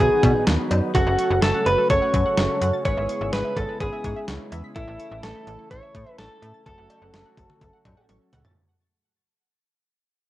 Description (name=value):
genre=synth-pop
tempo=126 BPM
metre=4/4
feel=straight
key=F# dorian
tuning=A4 = 441 Hz
part: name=direct-recorded clean electric guitar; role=melody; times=0.0-8.1 s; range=E4 to C#5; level=-23 LUFS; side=equal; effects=none
part: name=mellow synth brass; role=accompaniment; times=0.0-8.5 s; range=G#3 to B4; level=-31 LUFS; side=right 1 dB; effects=chorus, cassette tape
part: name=warm analog pad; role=sustained chords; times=0.0-8.5 s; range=C#3 to F#4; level=-33 LUFS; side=equal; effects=chorus, cassette tape
part: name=slap-like FM bass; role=bass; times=0.0-8.4 s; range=F#1 to B2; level=-25 LUFS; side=equal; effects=none
part: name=clean 12-bit digital drum machine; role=drums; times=0.2-8.6 s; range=cowbell, hi-hat, kick drum, snare drum, toms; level=-25 LUFS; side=equal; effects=none
part: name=analog pluck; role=arpeggios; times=0.9-8.5 s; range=A4 to B6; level=-36 LUFS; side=right 1 dB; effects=chorus, phaser, cassette tape
room=light reverb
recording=home recording on cassette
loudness=-19 LUFS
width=side -15 dB against mid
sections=0.0-8.6 A section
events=fade-out 0.0-8.6; drum fill 8.1-8.6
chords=0.0 B; 0.9 F#m; 2.9 C#m7/G#; 4.8 A; 6.7 F#m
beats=0.00 0.47 | 0.95 1.42 1.90 2.38 | 2.85 3.33 3.81 4.28 | 4.76 5.23 5.71 6.19 | 6.66 7.14 7.61 8.09